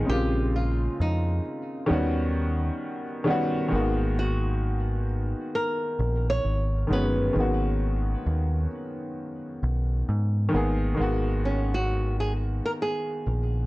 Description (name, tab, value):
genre	hip hop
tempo	66 BPM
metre	4/4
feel	swing 63% on 16ths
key	G# minor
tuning	A4 = 440 Hz
part	flamenco guitar	melody	0.0-13.7 s	C#4 to C#5	-31 LUFS	equal	low-pass filter, plate reverb, analog delay
part	warm upright piano	accompaniment	0.0-13.7 s	C#3 to G#4	-28 LUFS	equal	cassette tape, low-pass filter, plate reverb
part	deep dub picked electric bass	bass	0.0-13.7 s	G1 to G#2	-26 LUFS	equal	none
room	light reverb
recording	dry, gritty hardware recording, transformer saturation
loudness	-24 LUFS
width	side -19 dB against mid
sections	0.0-11.0 A section; 11.0-13.7 B section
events	none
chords	0.1 A#m9; 1.9 D#7alt; 3.7 G#m9